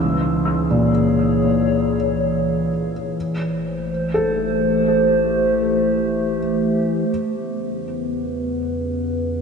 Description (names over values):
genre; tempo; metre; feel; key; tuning
ambient; 61 BPM; 4/4; straight; unclear; A4 = 441 Hz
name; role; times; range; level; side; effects
warbly tape-like pad; sustained chords; 0.0-9.4 s; E3 to C#5; -20 LUFS; right 1 dB; chorus, built-in reverb
felt-muted upright piano; arpeggios; 0.0-7.1 s; A#2 to E6; -22 LUFS; left 3 dB; tape echo
warm sub bass; bass; 0.0-9.4 s; A1 to E2; -32 LUFS; equal; tube saturation
analog drone; drone; 0.0-9.4 s; C#3 to E3; -27 LUFS; equal; chorus
room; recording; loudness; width
wet cathedral reverb, RT60 6.0 s; in a vast, echoing space, cassette tape, nothing above 10.3 kHz; -18 LUFS; side -5 dB against mid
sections
0.0-7.1 A section; 7.1-9.4 B section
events
fade-out on sub bass 0.0-7.1; filter sweep on ambient pad 7.1-9.4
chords
0.0 C#m; 3.2 Am7; 7.1 E